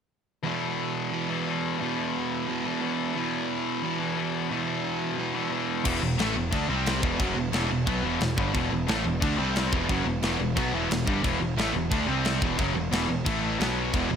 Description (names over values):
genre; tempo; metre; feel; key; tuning
heavy metal; 178 BPM; 4/4; straight; E minor from 5.9 s; A4 = 440 Hz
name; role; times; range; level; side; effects
sludgy distorted guitar; riff; 0.4-14.2 s; E2 to D4; -30 LUFS; right 9 dB; overdrive
tight distorted guitar; riff; 0.4-14.2 s; E2 to D4; -30 LUFS; left 10 dB; distortion
distorted electric guitar; riff; 5.8-14.2 s; E2 to D4; -31 LUFS; left 2 dB; overdrive
fuzz picked electric bass; bass; 5.9-14.2 s; E1 to D2; -31 LUFS; equal; overdrive
tight metal drum kit; drums; 5.9-14.0 s; crash cymbal, kick drum, snare drum; -30 LUFS; equal; none
room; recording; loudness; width
light reverb; none; -24 LUFS; side -7 dB against mid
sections
0.4-5.9 A section; 5.9-14.2 B section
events
none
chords
0.4 E5; 6.7 C5; 7.0 Em; 9.4 C5; 9.7 Em; 12.1 C5; 12.4 E5; 13.3 A5; 13.6 B5